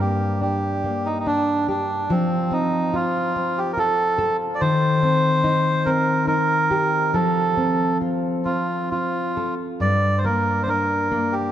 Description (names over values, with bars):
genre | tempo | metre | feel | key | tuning
celtic folk, Celtic slow air | 71 BPM | 3/4 | rubato | unclear | A4 = 440 Hz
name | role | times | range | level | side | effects
melodica | melody | 0.0-11.5 s | C4 to D5 | -21 LUFS | right 2 dB | none
nylon-string guitar | accompaniment | 0.0-11.5 s | G2 to A4 | -22 LUFS | left 1 dB | none
room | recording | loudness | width
wet church reverb, RT60 3.7 s | dark, warm production | -19 LUFS | side -11 dB against mid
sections
0.0-11.5 A section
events
none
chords
0.0 Gm; 2.1 F; 4.6 Cm/Eb; 7.1 F; 9.8 Gm